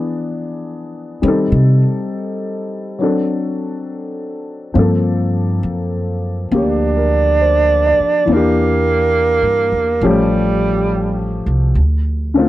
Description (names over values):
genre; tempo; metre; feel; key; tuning
jazz ballad; 69 BPM; 4/4; swing 68% on 8ths; G minor; A4 = 442 Hz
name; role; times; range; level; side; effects
warm upright piano; accompaniment; 0.0-12.5 s; D3 to D5; -18 LUFS; left 2 dB; none
upright bass; bass; 1.2-12.5 s; A1 to Eb3; -17 LUFS; equal; none
breathy tenor saxophone; melody; 6.6-11.5 s; G3 to D4; -15 LUFS; right 3 dB; none
room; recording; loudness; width
little or no reverb; dry, close 1970s-style studio recording; -13 LUFS; side -15 dB against mid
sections
0.0-4.8 A section; 4.8-12.5 B section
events
upright bass solo 0.0-4.8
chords
0.0 E7; 1.2 Am7b5; 3.0 D7; 4.8 Gm11; 8.3 Em7b5; 10.0 A7alt; 11.8 Dm7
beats
0.36 | 1.23 2.10 2.98 3.87 | 4.75 5.64 6.52 7.40 | 8.27 9.15 10.02 10.89 | 11.76